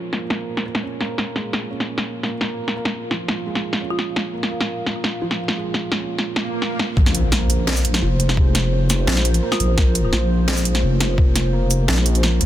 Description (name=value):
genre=half-time drum and bass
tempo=171 BPM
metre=4/4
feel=swing 53% on 16ths, half-time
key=Bb minor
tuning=A4 = 440 Hz
part: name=dark analog pad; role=sustained chords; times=0.0-12.5 s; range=Bb3 to F5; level=-29 LUFS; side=equal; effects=chorus, vintage 12-bit sampler grit, sidechain pumping
part: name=felt-muted upright piano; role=arpeggios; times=0.0-12.5 s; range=F3 to Bb4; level=-28 LUFS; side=right 2 dB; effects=ping-pong delay
part: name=drum and bass drum kit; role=drums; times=0.1-12.5 s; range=hi-hat, shaker, snare drum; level=-23 LUFS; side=equal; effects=overdrive, soft clipping on snare, low-pass filter on snare, low-pass filter on cymbals, low-pass filter on hats, low-pass filter on perc
part: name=folk marimba with medium mallets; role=melody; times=3.9-4.3, 9.5-9.9 s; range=F4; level=-32 LUFS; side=equal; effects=tape echo
part: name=swell and impact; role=sound effects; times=6.4-8.4 s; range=none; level=-27 LUFS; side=right 1 dB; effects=none
part: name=deep soft wobble bass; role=bass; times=7.0-12.5 s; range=F1 to Db2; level=-18 LUFS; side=equal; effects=chorus
part: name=electronic kick drum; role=drums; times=7.0-11.3 s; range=none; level=-17 LUFS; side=equal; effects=none
room=little or no reverb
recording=dense, heavily limited modern master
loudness=-18 LUFS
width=side -12 dB against mid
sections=0.0-7.0 A section; 7.0-12.5 B section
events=filter sweep on analog synth pad 0.0-7.0; filter sweep on felt piano 0.0-7.0; swell 6.4-7.0; drop 7.0-12.5; impact 7.0-8.4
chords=0.0 Bbm